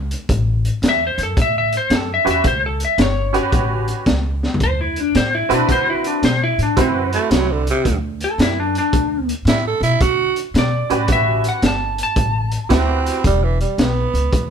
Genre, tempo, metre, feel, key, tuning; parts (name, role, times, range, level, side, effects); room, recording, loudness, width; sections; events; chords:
electric blues shuffle; 111 BPM; 4/4; swing 66% on 8ths; A4 = 440 Hz
upright bass; bass; 0.0-14.5 s; E1 to D3; -21 LUFS; equal
crunchy breakbeat drum kit; drums; 0.1-14.5 s; hi-hat, kick drum, snare drum, toms; -20 LUFS; equal
lightly driven lead guitar; melody; 0.9-13.2 s; C4 to A5; -19 LUFS; left 2 dB
honky-tonk upright piano; accompaniment; 2.2-7.6, 10.9-13.2 s; C4 to B4; -20 LUFS; right 4 dB
growling tenor saxophone; second line; 7.1-14.5 s; C3 to A4; -20 LUFS; right 6 dB
light reverb; band playing live in one room; -15 LUFS; side -7 dB against mid
0.0-14.5 A section
drum fill 4.3
0.0 A13; 4.6 D13; 11.1 A13; 13.2 E5